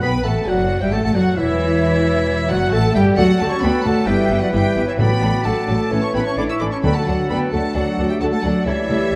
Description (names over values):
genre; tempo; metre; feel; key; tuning
quick classical-period movement for symphony orchestra; 132 BPM; 4/4; straight; D major; A4 = 440 Hz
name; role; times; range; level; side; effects
clear studio violin section; melody; 0.0-9.2 s; E5 to E6; -30 LUFS; equal; none
clear oboe; second line; 0.0-9.2 s; A4 to B5; -32 LUFS; equal; none
rich chamber violin section; second line; 0.0-9.2 s; C#4 to B4; -30 LUFS; equal; none
silver concert flute; second line; 0.0-9.2 s; C#5 to C#6; -29 LUFS; equal; none
warm clarinet; second line; 0.0-9.2 s; E4 to E5; -30 LUFS; equal; none
dark chamber viola section; accompaniment; 0.0-9.2 s; E3 to B3; -29 LUFS; equal; none
mellow bassoon; accompaniment; 0.0-9.2 s; E3 to B3; -27 LUFS; equal; none
dark French horn section; sustained chords; 0.0-9.2 s; E3 to G4; -27 LUFS; equal; none
clear chamber cello section; bass; 0.0-9.2 s; E3 to E4; -26 LUFS; equal; none
rich chamber double bass section; bass; 0.0-9.2 s; E1 to D2; -25 LUFS; equal; none
timpani; percussion; 5.0-7.5 s; A2 to D3; -26 LUFS; equal; none
room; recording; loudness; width
moderate scoring stage reverb, RT60 1.8 s; dark, warm production; -18 LUFS; mono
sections
0.0-9.2 A section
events
none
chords
0.0 Gmaj9; 1.4 A7/E; 3.2 D; 4.1 Em/G; 5.0 D/A; 5.9 A; 6.8 D